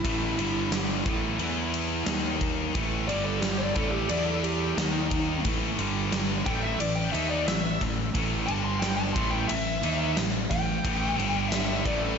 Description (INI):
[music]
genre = hard rock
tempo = 89 BPM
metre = 4/4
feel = straight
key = unclear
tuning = A4 = 440 Hz
[part]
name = bluesy overdriven lead guitar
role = melody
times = 0.0-12.2 s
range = D#4 to C6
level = -31 LUFS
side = left 1 dB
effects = distortion, slapback echo
[part]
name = crunchy overdriven guitar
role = riff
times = 0.0-12.2 s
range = G2 to E4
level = -31 LUFS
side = right 10 dB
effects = none
[part]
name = fuzz fingered electric bass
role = bass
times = 0.0-12.2 s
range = G1 to E2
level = -32 LUFS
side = equal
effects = overdrive
[part]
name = huge arena drum kit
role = drums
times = 0.0-12.0 s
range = kick drum, ride cymbal, snare drum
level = -30 LUFS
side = equal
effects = none
[part]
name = heavy high-gain guitar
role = riff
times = 0.1-12.2 s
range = G2 to E4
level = -32 LUFS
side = left 12 dB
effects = distortion
[sound]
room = moderate lush hall reverb, RT60 1.8 s, studio reverb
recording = big arena sound, nothing above 7.7 kHz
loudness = -24 LUFS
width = side -6 dB against mid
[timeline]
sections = 0.0-12.2 A section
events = lead electric guitar solo 0.0-12.2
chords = 0.4 G5; 1.1 A5; 1.4 E5; 2.1 D#5; 2.7 A5; 3.1 G5; 3.8 A5; 4.1 E5; 4.8 D#5; 5.4 A5; 5.8 G5; 6.5 A5; 8.5 G5; 9.2 A5; 11.2 G5; 11.9 A5